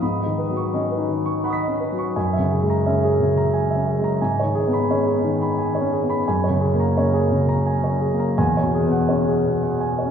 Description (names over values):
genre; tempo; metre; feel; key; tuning
classical, impressionist solo piano; 85 BPM; 3/4; rubato; unclear; A4 = 440 Hz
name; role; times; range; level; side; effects
warm concert grand piano; solo; 0.0-10.1 s; E2 to B6; -18 LUFS; equal; none
room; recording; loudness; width
wet church reverb, RT60 3.1 s; recorded in a church or concert hall; -18 LUFS; side -8 dB against mid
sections
0.0-10.1 A section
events
none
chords
0.0 Badd9/G#; 2.2 F#9; 4.2 G#madd11; 6.3 F#add9; 8.4 E69